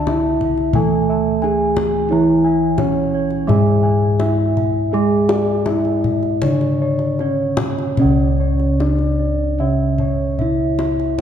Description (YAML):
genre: Javanese gamelan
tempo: 75-88 BPM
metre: 4/4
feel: straight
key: C# pelog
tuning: A4 = 437 Hz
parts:
  - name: gamelan-type bronze metallophone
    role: melody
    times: 0.0-11.2 s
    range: C#4 to A4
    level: -20 LUFS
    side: left 1 dB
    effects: none
  - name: gamelan-type bronze metallophone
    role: accompaniment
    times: 0.0-11.2 s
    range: C#3 to A3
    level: -22 LUFS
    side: right 4 dB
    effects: none
  - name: gamelan-type bossed gongs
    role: arpeggios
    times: 0.0-10.8 s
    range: C#5 to A5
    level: -26 LUFS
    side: left 2 dB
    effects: none
  - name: gamelan-type bronze metallophone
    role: arpeggios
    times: 0.0-11.2 s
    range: C#5 to A5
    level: -26 LUFS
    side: right 7 dB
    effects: none
  - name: gamelan-type bossed gongs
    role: bass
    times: 0.0-11.2 s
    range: C#2 to G#4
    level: -20 LUFS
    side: left 1 dB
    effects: none
  - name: kendang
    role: percussion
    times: 0.1-11.2 s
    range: none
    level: -25 LUFS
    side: left 3 dB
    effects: none
room: moderate concert hall reverb, RT60 2.0 s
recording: dark, warm production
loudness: -15 LUFS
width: side -9 dB against mid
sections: 0.0-8.0 A section; 8.0-11.2 B section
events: none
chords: none